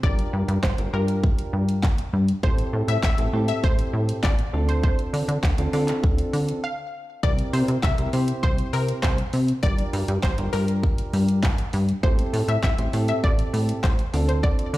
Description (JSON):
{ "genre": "dance-pop", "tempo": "100 BPM", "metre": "4/4", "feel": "straight", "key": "D minor", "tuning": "A4 = 440 Hz", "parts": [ { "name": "analog pluck", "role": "melody", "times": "0.0-14.8 s", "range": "Bb4 to F5", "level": "-30 LUFS", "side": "left 2 dB", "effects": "chorus, ping-pong delay" }, { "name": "soft electric-piano-like synth keys", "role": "accompaniment", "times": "0.0-14.8 s", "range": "C4 to C5", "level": "-30 LUFS", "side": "right 2 dB", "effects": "chorus, tremolo, sidechain pumping" }, { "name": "plucky analog bass", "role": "bass", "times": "0.0-14.8 s", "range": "G1 to D3", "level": "-23 LUFS", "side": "equal", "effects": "sidechain pumping" }, { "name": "pop drum kit", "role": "drums", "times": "0.0-14.8 s", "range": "handclaps, hi-hat, kick drum, snare drum", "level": "-24 LUFS", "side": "equal", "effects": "none" } ], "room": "digital ambience", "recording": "played on a big sound system in a bare room, large studio reverb", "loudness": "-20 LUFS", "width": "side -16 dB against mid", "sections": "0.0-14.8 A section", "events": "break 6.6-7.2", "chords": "0.0 Gm7; 2.4 Am7; 4.5 Dm7; 7.2 C7; 9.6 Gm7; 12.0 Am7; 14.1 Dm7", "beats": "| 0.04 0.64 1.24 1.83 | 2.44 3.04 3.63 4.24 | 4.83 5.43 6.04 6.63 | 7.24 7.83 8.44 9.04 | 9.63 10.23 10.84 11.44 | 12.04 12.63 13.23 13.84 | 14.44" }